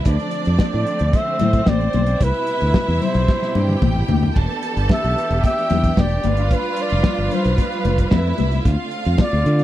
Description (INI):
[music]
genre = disco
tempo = 112 BPM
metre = 4/4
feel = straight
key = D dorian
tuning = A4 = 441 Hz
[part]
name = clear studio violin section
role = second line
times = 0.0-9.6 s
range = C4 to A5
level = -27 LUFS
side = right 2 dB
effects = slapback echo
[part]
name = warm studio string section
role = sustained chords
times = 0.0-9.6 s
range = B2 to B4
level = -27 LUFS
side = right 3 dB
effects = none
[part]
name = modern bright fingered electric bass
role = bass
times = 0.1-9.6 s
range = E1 to D3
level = -19 LUFS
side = equal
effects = none
[part]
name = warm soul drum kit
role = drums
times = 0.1-9.6 s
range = crash cymbal, hi-hat, kick drum, snare drum, toms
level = -18 LUFS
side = equal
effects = none
[part]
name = breathy flugelhorn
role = melody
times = 0.6-9.6 s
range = B4 to E5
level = -23 LUFS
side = equal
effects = none
[part]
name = congas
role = percussion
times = 0.6-9.3 s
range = none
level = -26 LUFS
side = left 10 dB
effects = none
[sound]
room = little or no reverb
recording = dry, close 1970s-style studio recording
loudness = -16 LUFS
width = side -13 dB against mid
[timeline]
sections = 0.0-9.6 A section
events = drum fill 3.3-4.4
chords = 0.1 Dm7; 2.2 Cmaj7; 4.4 Em7; 6.2 G7; 8.6 Dm7